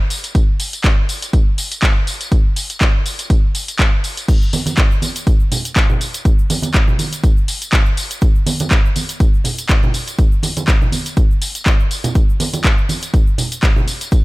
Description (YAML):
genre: house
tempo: 122 BPM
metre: 4/4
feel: swing 55% on 16ths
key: none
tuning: none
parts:
  - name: punchy analog drum machine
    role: drums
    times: 0.1-14.2 s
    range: crash cymbal, handclaps, hi-hat, tambourine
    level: -20 LUFS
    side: equal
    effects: sidechain pumping on hats, sidechain pumping on perc, sidechain pumping on cymbals
  - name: electronic kick drum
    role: drums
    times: 0.3-14.2 s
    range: none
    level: -13 LUFS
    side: equal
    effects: none
  - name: egg shaker and congas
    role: percussion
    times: 4.3-14.2 s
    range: none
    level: -23 LUFS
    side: right 3 dB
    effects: sidechain pumping on perc
room: little or no reverb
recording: none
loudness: -13 LUFS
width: side -21 dB against mid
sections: 0.0-14.2 A section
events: none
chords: none